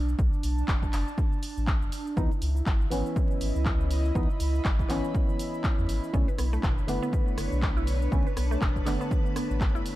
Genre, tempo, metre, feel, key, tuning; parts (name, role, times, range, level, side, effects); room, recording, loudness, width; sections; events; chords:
deep house; 121 BPM; 4/4; swing 58% on 16ths; B minor; A4 = 440 Hz
warm sub bass; bass; 0.0-9.8 s; F#1 to E2; -28 LUFS; equal; tube saturation, sidechain pumping
airy breathy pad; texture; 0.0-10.0 s; D4 to B5; -36 LUFS; right 1 dB; chorus, sidechain pumping
punchy analog drum machine; drums; 0.1-10.0 s; handclaps, hi-hat, rim click, shaker; -37 LUFS; equal
electronic kick drum; drums; 0.2-9.7 s; -27 LUFS; equal
percussive organ stab; stabs; 2.2-10.0 s; D3 to D#4; -33 LUFS; equal; lush chorus, sidechain pumping, dub echo
mallet-like synth pluck; arpeggios; 6.1-9.8 s; B2 to B4; -37 LUFS; right 3 dB; chorus, phaser, sidechain pumping, dub echo
soft string machine; texture; 6.1-10.0 s; B4 to B5; -42 LUFS; equal; ensemble chorus, sidechain pumping
digital ambience; dark, warm production, vinyl crackle; -24 LUFS; side -16 dB against mid
0.0-10.0 A section
0.0 Bm7; 2.2 C#m9; 6.1 Bm9